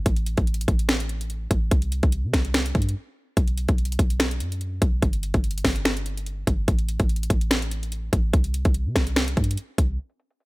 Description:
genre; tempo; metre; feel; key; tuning
hip hop, trap; 145 BPM; 4/4; half-time; unclear; A4 = 440 Hz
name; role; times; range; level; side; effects
warm 808-style bass; bass; 0.0-10.0 s; G1 to C3; -25 LUFS; equal; none
trap drum kit; drums; 0.1-10.5 s; finger snaps, hi-hat, kick drum, snare drum; -22 LUFS; equal; none
room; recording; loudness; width
little or no reverb; low-pass filter; -21 LUFS; side -22 dB against mid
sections
0.0-10.0 A section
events
break 3.0-3.4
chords
none

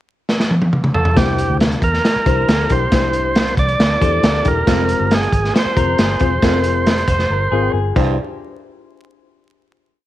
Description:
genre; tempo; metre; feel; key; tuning
uptempo 1960s-style soul; 137 BPM; 4/4; straight; C mixolydian; A4 = 437 Hz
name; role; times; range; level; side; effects
crunchy breakbeat drum kit; drums; 0.3-8.1 s; crash cymbal, hi-hat, kick drum, snare drum, toms; -16 LUFS; equal; none
overdriven tonewheel organ; melody; 0.9-7.7 s; G4 to D5; -19 LUFS; right 2 dB; none
reed electric piano; accompaniment; 1.2-8.2 s; C2 to Ab5; -23 LUFS; left 6 dB; spring reverb
vintage muted fingered electric bass; bass; 1.2-8.2 s; E1 to E2; -20 LUFS; equal; none
electric guitar through a small old amp; riff; 2.3-7.9 s; G4 to C5; -27 LUFS; left 8 dB; none
breathy baritone saxophone; riff; 4.7-8.2 s; F2 to G2; -25 LUFS; right 9 dB; none
room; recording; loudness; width
light reverb, small room ambience; 1960s-style stereo with parts hard left and right, vinyl crackle; -13 LUFS; side -14 dB against mid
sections
0.0-1.2 pickup bar; 1.2-8.2 verse; 8.2-9.9 final hit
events
drum fill 0.3-1.2, 7.3-8.2; reed electric piano fill 7.3-8.2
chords
0.0 N.C.; 1.2 Cadd9; 4.7 Fm; 8.0 Cadd9; 8.2 N.C.

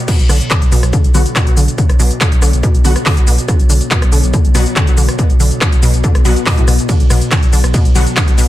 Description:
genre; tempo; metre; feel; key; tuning
driving peak-time techno; 141 BPM; 4/4; straight; B minor; A4 = 436 Hz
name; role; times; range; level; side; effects
metallic inharmonic drone; drone; 0.0-8.5 s; B2 to F#3; -22 LUFS; left 1 dB; chorus, built-in reverb, sidechain pumping
resonant blip pluck; riff; 0.1-8.4 s; A2 to D3; -20 LUFS; equal; chorus, sidechain pumping, tape echo
electronic kick drum; drums; 0.1-8.3 s; none; -12 LUFS; equal; none
techno drum kit; drums; 0.1-8.5 s; crash cymbal, handclaps, hi-hat, ride cymbal, rim click, shaker; -18 LUFS; equal; sidechain pumping on hats, sidechain pumping on perc, sidechain pumping on cymbals
saturated sub bass; bass; 0.2-8.5 s; B1; -14 LUFS; equal; tube saturation, sidechain pumping, low-pass filter
rave stab; stabs; 1.1-8.0 s; F#3 to F#4; -23 LUFS; left 2 dB; chorus, built-in reverb, sidechain pumping, diffuse ambient delay
room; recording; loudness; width
digital ambience; none; -9 LUFS; side -15 dB against mid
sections
0.0-8.5 A section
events
none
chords
0.0 B5

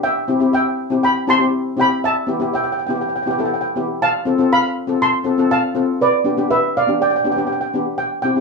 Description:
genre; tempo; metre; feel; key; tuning
calypso; 121 BPM; 4/4; straight; unclear; A4 = 440 Hz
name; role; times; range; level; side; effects
steel pan; melody; 0.0-8.4 s; B4 to C6; -18 LUFS; right 2 dB; none
steel pan; accompaniment; 0.0-8.4 s; B3 to A4; -19 LUFS; left 3 dB; none
room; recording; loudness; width
wet small room reverb, RT60 0.5 s; small room ambience; -15 LUFS; side -3 dB against mid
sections
0.0-8.0 A section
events
none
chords
0.0 C6; 2.0 Em; 4.0 F; 6.0 G

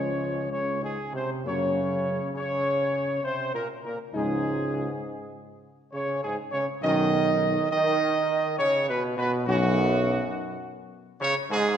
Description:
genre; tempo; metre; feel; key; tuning
classical; 67 BPM; 3/4; straight; unclear; A4 = 440 Hz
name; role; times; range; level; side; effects
mellow trumpet section; melody; 0.0-11.8 s; Gb4 to Eb5; -27 LUFS; equal; none
bright trombone section; sustained chords; 0.0-11.8 s; Gb2 to Ab3; -30 LUFS; right 2 dB; none
warm French horn section; sustained chords; 0.0-9.8 s; F3 to Eb4; -34 LUFS; left 4 dB; none
warm tuba; bass; 0.0-10.2 s; Cb2 to Gb2; -29 LUFS; right 1 dB; none
room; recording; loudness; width
wet concert hall reverb, RT60 1.8 s; none; -24 LUFS; side -9 dB against mid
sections
0.0-1.4 A section; 1.4-11.8 B section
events
none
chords
0.0 Db; 1.4 Gb; 4.1 Dbadd9; 6.8 Cbadd9

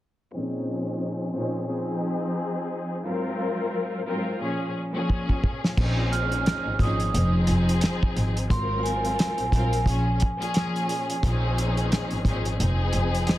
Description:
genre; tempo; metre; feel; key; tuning
hip hop, boom-bap hip-hop; 88 BPM; 4/4; swing 58% on 16ths; Bb minor; A4 = 440 Hz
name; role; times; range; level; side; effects
warm studio string section; accompaniment; 0.3-13.4 s; Ab2 to Bb4; -27 LUFS; left 1 dB; cassette tape, high-pass filter, low-pass filter
cloth-damped thuddy drum kit; drums; 5.1-13.4 s; crash cymbal, hi-hat, kick drum, rim click, snare drum; -25 LUFS; equal; none
warm double bass; bass; 5.8-13.2 s; F1 to Bb1; -25 LUFS; equal; none
vibraphone with medium hard mallets; melody; 6.1-11.2 s; Ab5 to F6; -30 LUFS; right 3 dB; high-pass filter, low-pass filter, plate reverb, tape echo
room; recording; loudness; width
light reverb; dense, heavily limited modern master; -23 LUFS; side -15 dB against mid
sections
0.3-5.8 A section; 5.8-13.4 B section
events
filter sweep on string section 0.3-5.8; drum fill 5.1-5.8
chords
0.3 Bbm11; 1.7 Fm7; 3.0 Ab13; 4.4 Bbm7; 5.8 Bbm11; 7.1 Fm7; 8.5 Ab13; 9.9 Bbm7; 11.2 Bbm11; 12.6 Fm7

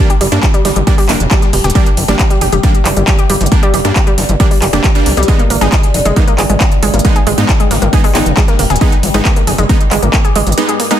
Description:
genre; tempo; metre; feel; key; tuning
driving peak-time techno; 136 BPM; 4/4; straight; G phrygian; A4 = 438 Hz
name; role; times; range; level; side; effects
analog pluck; riff; 0.0-11.0 s; G3 to Ab4; -17 LUFS; equal; chorus, tube saturation, sidechain pumping, tape echo
supersaw stab; stabs; 0.0-11.0 s; G3 to Eb4; -18 LUFS; right 2 dB; sidechain pumping, ping-pong delay
overtone-sweeping drone; drone; 0.0-11.0 s; G2 to G3; -21 LUFS; left 1 dB; chorus, built-in reverb, sidechain pumping
techno drum kit; drums; 0.1-11.0 s; handclaps, hi-hat; -18 LUFS; equal; overdrive, studio reverb
gritty driven synth bass; bass; 0.2-10.5 s; D1 to Ab2; -14 LUFS; equal; sidechain pumping
dusty soul sampler-style drum kit; drums; 0.2-10.9 s; hi-hat, snare drum; -27 LUFS; equal; high-pass filter on snare, studio reverb, high-pass filter on hats, high-pass filter on room
electronic kick drum; drums; 0.4-10.2 s; none; -11 LUFS; equal; overdrive, studio reverb
room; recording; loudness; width
digital ambience; dense, heavily limited modern master; -9 LUFS; side -10 dB against mid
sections
0.0-11.0 A section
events
none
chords
0.0 Gm; 5.3 Abm

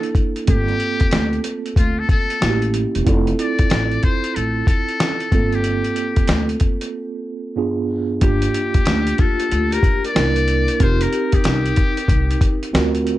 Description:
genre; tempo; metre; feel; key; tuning
hip hop, jazz-hop; 93 BPM; 4/4; swing 64% on 16ths; G dorian, G minor from 8.2 s; A4 = 440 Hz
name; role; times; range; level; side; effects
trumpet with metal mute; melody; 0.0-12.6 s; F4 to D5; -24 LUFS; left 4 dB; plate reverb
mellow tine electric piano; accompaniment; 0.0-13.2 s; G2 to Bb4; -22 LUFS; right 4 dB; medium stereo tremolo, plate reverb
dusty soul sampler-style drum kit; drums; 0.0-13.2 s; hi-hat, kick drum, snare drum; -18 LUFS; equal; none
upright bass; bass; 0.5-13.1 s; E1 to D2; -21 LUFS; equal; none
vibraphone with medium mallets; second line; 8.2-12.6 s; D4 to Bb4; -26 LUFS; left 6 dB; plate reverb
room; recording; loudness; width
light reverb; dark, warm production; -16 LUFS; side -15 dB against mid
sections
0.0-8.2 A section; 8.2-13.2 B section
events
break 6.9-8.2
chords
0.5 Gm11; 2.4 A7b9; 3.1 Dm7/F; 5.3 Gm11; 7.6 G7b9; 8.2 Gm7; 10.2 C9; 10.8 F7sus4

